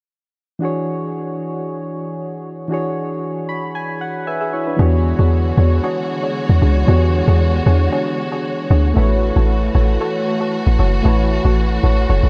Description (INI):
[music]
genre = amapiano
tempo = 115 BPM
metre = 4/4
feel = straight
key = unclear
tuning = A4 = 440 Hz
[part]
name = soft electric-piano-like synth keys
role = accompaniment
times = 0.6-12.3 s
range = E3 to B5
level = -24 LUFS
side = equal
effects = chorus
[part]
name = dark studio string section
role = sustained chords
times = 4.8-12.3 s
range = D3 to C#5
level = -27 LUFS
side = equal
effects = none
[part]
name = soft round pluck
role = stabs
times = 4.8-12.3 s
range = D4 to C#5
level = -25 LUFS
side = equal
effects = chorus, analog delay
[part]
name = deep log drum bass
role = bass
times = 4.8-12.3 s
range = F#1 to E2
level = -16 LUFS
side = equal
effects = none
[sound]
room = light reverb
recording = none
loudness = -17 LUFS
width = mono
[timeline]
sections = 0.6-4.8 A section; 4.8-12.3 B section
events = synth keys fill 3.2-4.8; drop 4.8-12.3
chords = 0.6 E13; 9.0 A6